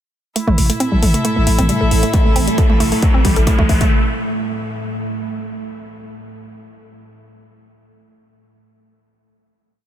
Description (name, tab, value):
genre	driving peak-time techno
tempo	135 BPM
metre	4/4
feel	straight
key	unclear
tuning	A4 = 440 Hz
part	woody wave-folded pluck	riff	0.4-3.9 s	G3 to A4	-22 LUFS	right 1 dB	chorus, overdrive, sidechain pumping, dub echo
part	deep dark ambient pad	drone	0.8-4.0 s	A2 to A3	-23 LUFS	equal	chorus, built-in reverb, sidechain pumping
part	techno drum kit	drums	0.4-3.9 s	hi-hat, toms	-22 LUFS	equal	sidechain pumping on hats, studio reverb, sidechain pumping on toms
part	riser	sound effects	2.0-3.9 s	none	-27 LUFS	right 1 dB	none
part	bright chamber string section	texture	0.4-3.9 s	E4 to E5	-26 LUFS	equal	sidechain pumping
part	growling 808-style bass	bass	0.5-3.8 s	A1	-18 LUFS	equal	overdrive, sidechain pumping, low-pass filter
part	electronic kick drum	drums	2.1-3.9 s	none	-14 LUFS	equal	distortion, studio reverb
room	digital ambience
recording	dense, heavily limited modern master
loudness	-14 LUFS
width	side -11 dB against mid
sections	0.4-3.9 build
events	build-up 0.4-3.9; filter sweep on synth arpeggio sound 0.4-3.9; riser 2.0-3.9; drum fill 2.1-3.9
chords	0.4 A5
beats	| 0.36 0.80 1.25 1.69 | 2.14 2.58 3.03 3.47